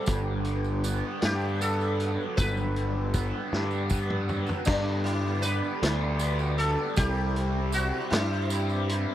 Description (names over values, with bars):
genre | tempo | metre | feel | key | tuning
psychedelic rock | 52 BPM (dotted quarters) | 6/8 | straight | unclear | A4 = 440 Hz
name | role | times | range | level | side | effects
sitar | melody | 0.0-8.9 s | D4 to B4 | -32 LUFS | equal | slapback echo
mellow tonewheel organ | sustained chords | 0.0-9.1 s | B4 to E6 | -41 LUFS | right 2 dB | slow rotary speaker
raw garage guitar | riff | 0.0-9.1 s | G2 to E4 | -32 LUFS | right 1 dB | overdrive, phaser
fuzz picked electric bass | bass | 0.1-9.1 s | G1 to G2 | -28 LUFS | equal | overdrive
vintage drum kit | drums | 0.1-9.1 s | crash cymbal, hi-hat, kick drum, snare drum, toms | -29 LUFS | equal | none
tambourine | percussion | 0.1-8.8 s | none | -42 LUFS | right 10 dB | none
room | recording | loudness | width
little or no reverb | dry, close 1970s-style studio recording | -25 LUFS | side -12 dB against mid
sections
0.0-4.7 A section; 4.7-9.1 B section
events
drum fill 3.5-4.7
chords
0.1 Gmaj7; 4.7 G; 7.0 Cmaj7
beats
| 0.08 1.23 | 2.38 3.52 | 4.67 5.82 | 6.97 8.12